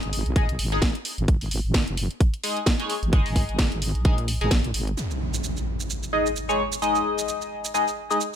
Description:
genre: bass house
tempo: 130 BPM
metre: 4/4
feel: swing 57% on 16ths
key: unclear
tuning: A4 = 441 Hz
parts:
  - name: band-passed chord stab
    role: stabs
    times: 0.0-8.2 s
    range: G#3 to D#5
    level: -25 LUFS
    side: left 2 dB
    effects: phaser, analog chorus, sidechain pumping, ping-pong delay
  - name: wobble bass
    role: bass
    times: 0.0-5.0 s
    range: F#1 to B1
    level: -26 LUFS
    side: equal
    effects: chorus, tube saturation, sidechain pumping
  - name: garage drum kit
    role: drums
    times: 0.0-8.3 s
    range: hi-hat, shaker, snare drum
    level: -29 LUFS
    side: right 1 dB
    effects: none
  - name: electronic kick drum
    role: drums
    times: 0.4-4.6 s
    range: none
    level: -20 LUFS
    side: equal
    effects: none
  - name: impact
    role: sound effects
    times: 5.0-6.8 s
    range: none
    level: -31 LUFS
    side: equal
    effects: none
room: digital ambience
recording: none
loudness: -22 LUFS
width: side -9 dB against mid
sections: 0.0-5.0 A section; 5.0-8.4 B section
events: impact 5.0-6.8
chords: 0.0 G#5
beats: 0.36 0.82 | 1.28 1.74 2.21 2.67 | 3.13 3.59 4.05 4.51 | 4.97 5.43 5.90 6.36 | 6.82 7.28 7.74 8.21

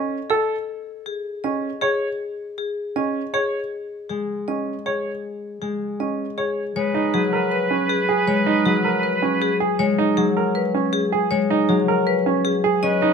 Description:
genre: classical, minimalist pattern music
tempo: 158 BPM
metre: 4/4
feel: straight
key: unclear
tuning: A4 = 437 Hz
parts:
  - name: marimba with hard mallets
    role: melody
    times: 0.0-13.1 s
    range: G#4 to D#5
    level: -25 LUFS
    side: left 5 dB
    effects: none
  - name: clear baby grand piano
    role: arpeggios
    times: 0.0-13.1 s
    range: C#4 to C#5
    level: -23 LUFS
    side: right 7 dB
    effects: none
  - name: concert harp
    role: accompaniment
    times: 4.1-13.1 s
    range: F#3 to C#4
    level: -23 LUFS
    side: left 4 dB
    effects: none
  - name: bright oboe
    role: second line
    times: 6.8-9.6, 12.8-13.1 s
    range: B4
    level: -24 LUFS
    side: right 3 dB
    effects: none
room: light reverb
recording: close, detailed microphones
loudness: -19 LUFS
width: side -6 dB against mid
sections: 0.0-6.8 A section; 6.8-13.1 B section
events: none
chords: 0.0 A/C#; 0.7 C#5; 6.8 C#9sus4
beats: 0.30 | 0.68 1.06 1.44 1.82 | 2.20 2.58 2.96 3.34 | 3.72 4.10 4.48 4.86 | 5.24 5.62 6.00 6.38 | 6.76 7.14 7.52 7.90 | 8.28 8.66 9.04 9.42 | 9.79 10.18 10.55 10.94 | 11.31 11.69 12.07 12.45 | 12.83

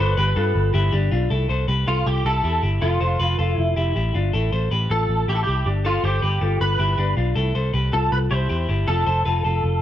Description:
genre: jangly indie pop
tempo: 159 BPM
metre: 4/4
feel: straight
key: C major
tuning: A4 = 441 Hz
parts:
  - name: electric guitar through a small old amp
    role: melody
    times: 0.0-9.8 s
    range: F4 to C5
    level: -25 LUFS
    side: right 1 dB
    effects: ensemble chorus
  - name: electric guitar through a small old amp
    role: arpeggios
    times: 0.0-9.8 s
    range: D4 to C5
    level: -25 LUFS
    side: left 3 dB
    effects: none
  - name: vintage muted picked electric bass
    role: bass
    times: 0.0-9.8 s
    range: F1 to G2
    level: -21 LUFS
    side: equal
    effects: none
room: digital ambience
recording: none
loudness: -18 LUFS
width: side -11 dB against mid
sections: 0.0-1.3 A section; 1.3-9.8 B section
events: none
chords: 0.0 G7; 1.3 C6; 2.8 Fmaj7; 4.3 Am7; 5.7 G7; 7.4 C6; 8.9 F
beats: 0.17 0.55 0.93 | 1.31 1.69 2.06 2.44 | 2.82 3.20 3.58 3.96 | 4.34 4.71 5.09 5.47 | 5.85 6.23 6.61 6.99 | 7.36 7.74 8.12 8.50 | 8.88 9.25 9.63

